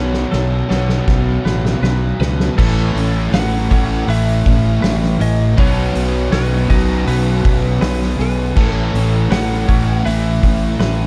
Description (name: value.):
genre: rock, shoegaze and dream pop.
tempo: 80 BPM.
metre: 4/4.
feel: straight.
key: A major.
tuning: A4 = 444 Hz.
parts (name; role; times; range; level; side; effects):
lightly driven lead guitar; melody; 0.0-11.1 s; B4 to F#5; -29 LUFS; equal; digital delay.
direct-recorded clean electric guitar; arpeggios; 0.0-11.1 s; G#4 to G#5; -33 LUFS; equal; analog chorus, digital delay.
overdriven electric guitar; riff; 0.0-11.1 s; A2 to A4; -26 LUFS; equal; reverse reverb.
thick fuzz guitar; riff; 0.0-11.1 s; A2 to B3; -24 LUFS; equal; distortion, ensemble chorus.
fuzz fingered electric bass; bass; 0.0-11.1 s; A1 to C#2; -20 LUFS; equal; overdrive.
loose indie drum kit; drums; 0.1-11.0 s; crash cymbal, hi-hat, kick drum, snare drum; -21 LUFS; equal; none.
distorted electric guitar; riff; 2.6-11.1 s; A2 to E4; -29 LUFS; equal; overdrive.
room: little or no reverb.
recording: dark, warm production.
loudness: -16 LUFS.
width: mono.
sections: 0.0-2.6 A section; 2.6-11.1 B section.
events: drum fill 0.0-2.6.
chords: 0.0 Bsus2; 2.6 Aadd9; 5.6 Bsus2; 8.6 Aadd9.